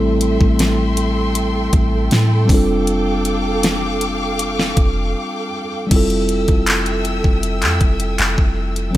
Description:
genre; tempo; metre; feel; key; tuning
contemporary R&B; 79 BPM; 4/4; straight; F major; A4 = 441 Hz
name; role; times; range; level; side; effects
mellow tine electric piano; accompaniment; 0.0-9.0 s; F#3 to A4; -20 LUFS; equal; none
warm studio string section; sustained chords; 0.0-9.0 s; A4 to E6; -24 LUFS; equal; sidechain pumping
soft 808-style bass; bass; 0.0-9.0 s; F1 to A2; -20 LUFS; equal; none
smooth R&B drum kit; drums; 0.2-9.0 s; crash cymbal, handclaps, hi-hat, kick drum, snare drum; -17 LUFS; equal; none
room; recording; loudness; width
little or no reverb; none; -14 LUFS; side -14 dB against mid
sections
0.0-5.9 A section; 5.9-9.0 B section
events
break 5.2-5.9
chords
0.0 Am7; 2.5 F69; 5.9 Fmaj9

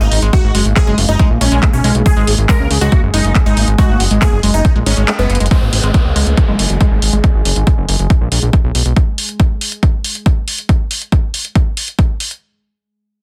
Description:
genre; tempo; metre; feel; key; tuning
psychedelic trance; 139 BPM; 4/4; straight; unclear; A4 = 443 Hz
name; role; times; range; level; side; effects
supersaw stab; melody; 0.0-5.4 s; B3 to A#4; -23 LUFS; equal; phaser, sidechain pumping, dub echo
evolving wavetable pad; sustained chords; 0.0-9.0 s; G#3; -28 LUFS; equal; phaser, built-in reverb, sidechain pumping
liquid acid bass; riff; 0.0-7.2 s; G#3 to A#3; -23 LUFS; equal; phaser, sidechain pumping, dub echo
fat analog bass; bass; 0.0-8.9 s; F#1 to C#2; -16 LUFS; equal; tube saturation
techno drum kit; drums; 0.1-12.4 s; handclaps, hi-hat; -21 LUFS; equal; none
electronic kick drum; drums; 0.3-12.1 s; none; -14 LUFS; equal; none
downlifter; sound effects; 5.5-9.0 s; none; -29 LUFS; equal; none
room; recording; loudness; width
digital ambience; dense, heavily limited modern master; -13 LUFS; mono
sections
0.0-5.5 A section; 5.5-12.4 B section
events
drop 0.0-5.5; kick drops out 5.1-5.5; band accent 5.1; drum fill 5.3; filter sweep on acid bass 5.5-7.2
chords
0.0 F#add9

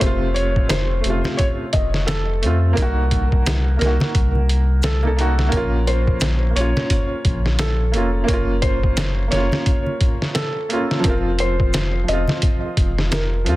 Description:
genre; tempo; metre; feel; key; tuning
trip hop; 87 BPM; 4/4; swing 59% on 16ths; unclear; A4 = 440 Hz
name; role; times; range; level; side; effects
felt-muted upright piano; melody; 0.0-13.6 s; A4 to Eb5; -26 LUFS; equal; tape echo
warm upright piano; accompaniment; 0.0-13.6 s; C3 to A4; -24 LUFS; right 1 dB; tremolo, tape echo
warm sub bass; bass; 0.0-13.6 s; F1 to F2; -19 LUFS; equal; tube saturation
trip hop sampler-style drum kit; drums; 0.0-13.6 s; hi-hat, kick drum, snare drum; -20 LUFS; equal; none
maracas and congas; percussion; 0.7-13.3 s; none; -26 LUFS; left 1 dB; none
room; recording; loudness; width
little or no reverb; dense, heavily limited modern master; -16 LUFS; side -17 dB against mid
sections
0.0-13.6 A section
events
none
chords
0.0 F; 2.8 Cm7b5; 5.5 Bbm; 8.3 Gbmaj7; 11.0 F5

